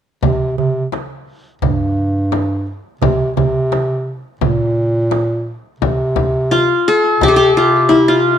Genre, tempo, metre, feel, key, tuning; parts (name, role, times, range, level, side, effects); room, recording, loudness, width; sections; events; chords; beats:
Turkish makam ensemble; 86 BPM; 4/4; straight; C makam hicaz; A4 = 439 Hz
mellow bass clarinet; bass; 0.2-8.4 s; G2 to C3; -17 LUFS; right 1 dB
darbuka; percussion; 0.2-5.3 s; -21 LUFS; right 12 dB
frame drum; percussion; 0.2-8.1 s; -21 LUFS; left 5 dB
qanun; melody; 6.5-8.4 s; E4 to A4-40c; -10 LUFS; left 2 dB; tape echo
moderate echo chamber reverb, RT60 1.6 s; 1960s-style stereo; -13 LUFS; side -9 dB against mid
0.2-5.8 A section; 5.8-8.4 B section
| 0.23 0.93 1.62 2.32 | 3.02 3.72 4.42 5.12 | 5.82 6.51 7.21 7.91